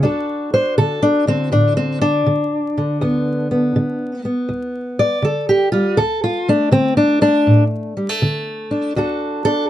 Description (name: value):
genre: acoustic country blues, solo or duo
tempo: 81 BPM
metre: 4/4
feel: swing 66% on 8ths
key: D major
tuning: A4 = 440 Hz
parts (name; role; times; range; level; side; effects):
- fingerpicked steel-string acoustic guitar; solo; 0.0-9.7 s; D2 to D5; -15 LUFS; equal; none
room: light reverb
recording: dark, warm production, vinyl crackle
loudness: -15 LUFS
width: side -12 dB against mid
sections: 0.0-9.7 A section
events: steel-string acoustic guitar solo 0.0-9.7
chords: 0.0 D; 3.0 G; 6.0 D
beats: | 0.03 0.77 1.52 2.26 | 3.00 3.75 4.49 5.24 | 5.98 6.72 7.47 8.21 | 8.95 9.70